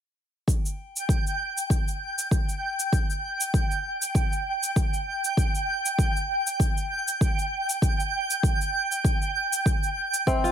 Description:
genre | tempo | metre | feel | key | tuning
organic downtempo | 98 BPM | 4/4 | swing 55% on 16ths | unclear | A4 = 441 Hz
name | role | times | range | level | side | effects
cabasa | drums | 0.5-10.5 s | none | -31 LUFS | equal | none
electronic kick drum | drums | 0.5-10.4 s | none | -24 LUFS | equal | overdrive
twinkling granular texture | texture | 1.0-10.5 s | G5 | -28 LUFS | right 2 dB | built-in reverb
kora | arpeggios | 10.3-10.5 s | C4 to F4 | -23 LUFS | left 2 dB | none
tabla | percussion | 10.3-10.4 s | none | -32 LUFS | right 6 dB | none
room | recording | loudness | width
light reverb, digital ambience | none | -23 LUFS | side -9 dB against mid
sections
0.5-10.5 A section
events
none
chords
none

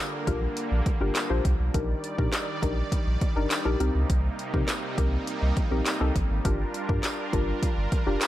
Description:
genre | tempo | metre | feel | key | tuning
dance-pop | 102 BPM | 4/4 | straight | C minor | A4 = 440 Hz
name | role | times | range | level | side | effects
soft round pluck | accompaniment | 0.0-8.3 s | C4 to C5 | -31 LUFS | left 3 dB | chorus, sidechain pumping
filtered supersaw swell | sustained chords | 0.0-8.3 s | C3 to D5 | -34 LUFS | right 2 dB | sidechain pumping
warm sub bass | bass | 0.3-8.2 s | F1 to C3 | -26 LUFS | equal | sidechain pumping
deep house drum kit | drums | 0.3-8.3 s | handclaps, hi-hat, kick drum, snare drum | -28 LUFS | equal | none
tambourine | percussion | 1.2-8.3 s | none | -39 LUFS | right 4 dB | none
room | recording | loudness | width
little or no reverb | dark, warm production | -24 LUFS | side -14 dB against mid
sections
0.0-8.3 A section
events
none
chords
0.0 Bb6; 1.7 Ebmaj7/Bb; 3.8 Cm7; 6.5 Gm7

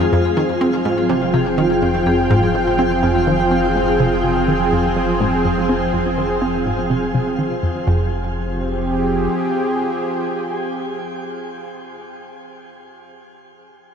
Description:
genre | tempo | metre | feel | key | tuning
ambient, sequencer-driven space music | 124 BPM | 4/4 | straight | F minor | A4 = 440 Hz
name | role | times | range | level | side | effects
lush unison pad | sustained chords | 0.0-12.5 s | F3 to G5 | -20 LUFS | right 1 dB | chorus
vibraphone with medium hard mallets | arpeggios | 0.0-4.0 s | F4 to C5 | -23 LUFS | left 2 dB | auto-pan, ping-pong delay
analog pluck | riff | 0.0-8.1 s | F2 to C4 | -20 LUFS | equal | chorus, ping-pong delay
round analog bass | bass | 0.0-9.3 s | F1 | -27 LUFS | equal | none
twinkling granular texture | texture | 0.0-7.9 s | F3 to F4 | -25 LUFS | right 1 dB | built-in reverb
room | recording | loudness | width
wet shimmer reverb, RT60 7.9 s | none | -16 LUFS | side -7 dB against mid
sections
0.1-7.9 A section; 7.9-11.7 B section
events
filter sweep on synth arpeggio sound 0.1-7.9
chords
0.1 Fm

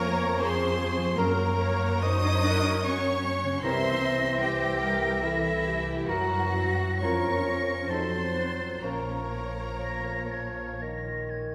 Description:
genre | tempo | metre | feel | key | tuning
classical, slow romantic movement for symphony orchestra | 60-79 BPM | 3/4 | rubato | Bb minor | A4 = 441 Hz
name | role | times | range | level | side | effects
rich chamber violin section | melody | 0.0-10.8 s | E5 to Eb6 | -37 LUFS | equal | none
clear clarinet | second line | 0.0-10.8 s | E4 to Eb5 | -38 LUFS | equal | none
rich studio violin section | second line | 0.0-10.8 s | E4 to Eb5 | -40 LUFS | equal | none
silver concert flute | second line | 0.0-11.5 s | Db6 to Bb6 | -36 LUFS | equal | none
mellow bassoon | accompaniment | 0.0-11.5 s | Eb3 to Gb3 | -39 LUFS | equal | none
rich chamber viola section | accompaniment | 0.0-11.3 s | Gb4 to E5 | -37 LUFS | equal | none
concert harp | arpeggios | 0.0-11.5 s | F2 to Db6 | -39 LUFS | equal | none
rich symphonic double bass section | bass | 0.0-11.5 s | Bb1 to Gb2 | -35 LUFS | equal | none
warm chamber cello section | bass | 0.0-10.8 s | E3 to Eb4 | -37 LUFS | equal | none
mellow French horn section | sustained chords | 1.2-9.2 s | F3 to F4 | -39 LUFS | equal | none
dark trumpet | stabs | 1.2-9.2 s | A4 to Bb4 | -36 LUFS | equal | none
room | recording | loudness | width
wet scoring stage reverb, RT60 1.5 s | recorded in a church or concert hall | -27 LUFS | mono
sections
0.0-11.5 A section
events
none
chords
0.0 Db/F; 1.2 Gb; 3.6 C7; 6.1 Gb7; 7.0 Bbm/F; 7.9 F7b9; 8.8 Bbm

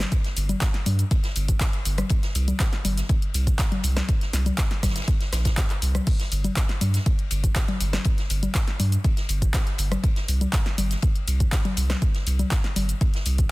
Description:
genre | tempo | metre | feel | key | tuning
acid house | 121 BPM | 4/4 | straight | unclear | A4 = 440 Hz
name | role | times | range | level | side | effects
saturated sub bass | bass | 0.0-13.4 s | G1 to G2 | -23 LUFS | equal | sidechain pumping
punchy analog drum machine | drums | 0.0-13.5 s | congas, crash cymbal, handclaps, hi-hat, rim click, shaker, snare drum | -28 LUFS | left 2 dB | none
electronic kick drum | drums | 0.1-13.5 s | none | -22 LUFS | equal | none
open jazz drum kit | drums | 0.1-13.4 s | ride cymbal, snare drum | -38 LUFS | left 2 dB | high-pass filter on cymbals, high-pass filter on snare, high-pass filter on room
room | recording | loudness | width
little or no reverb | dense, heavily limited modern master | -21 LUFS | side -21 dB against mid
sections
0.0-13.5 A section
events
none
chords
none

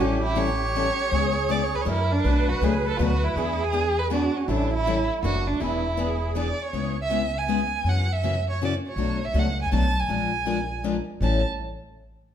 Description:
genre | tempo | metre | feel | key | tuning
acoustic string swing (jazz manouche) | 160 BPM | 3/4 | swing 62% on 8ths | A major | A4 = 439 Hz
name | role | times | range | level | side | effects
warm violin | melody | 0.0-11.4 s | C#4 to A5 | -26 LUFS | right 2 dB | none
musette accordion | second line | 0.0-6.6 s | D4 to B4 | -30 LUFS | right 4 dB | none
picked steel-string acoustic guitar | accompaniment | 0.0-11.4 s | A2 to Bb4 | -28 LUFS | left 5 dB | none
upright bass | bass | 0.0-11.4 s | E1 to F#2 | -26 LUFS | equal | none
room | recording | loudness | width
wet large studio reverb, RT60 1.3 s | band playing live in one room | -22 LUFS | side -9 dB against mid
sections
0.0-6.7 A section; 6.7-11.2 B section; 11.2-12.3 C section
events
none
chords
0.0 A7; 1.1 C#m7; 1.9 F#aug7; 2.2 Bm7; 3.4 E7; 4.5 A7; 5.2 F#aug7; 5.6 E7; 6.7 C#m7; 7.8 F#7; 9.0 Bm9; 10.1 Bb7; 11.2 A7

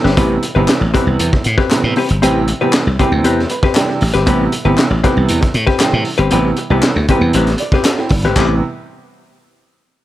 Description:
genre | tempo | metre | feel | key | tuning
funk | 117 BPM | 4/4 | straight | A minor | A4 = 440 Hz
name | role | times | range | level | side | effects
vintage hollow-body jazz guitar | accompaniment | 0.0-8.5 s | C4 to B4 | -18 LUFS | left 5 dB | none
slap bass | bass | 0.0-8.6 s | G1 to A2 | -15 LUFS | equal | none
crunchy breakbeat drum kit | drums | 0.1-8.5 s | hi-hat, kick drum, snare drum, splash cymbal | -17 LUFS | equal | none
clear upright piano | stabs | 0.2-8.6 s | C3 to D5 | -18 LUFS | right 4 dB | none
group handclap | percussion | 0.7-8.6 s | none | -22 LUFS | left 3 dB | none
room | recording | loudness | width
light reverb, small room ambience | none | -12 LUFS | side -14 dB against mid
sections
0.2-8.4 A section; 8.4-10.0 B section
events
drum fill 0.0; upright piano fill 3.2-4.3, 7.3-8.4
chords
0.2 Am9

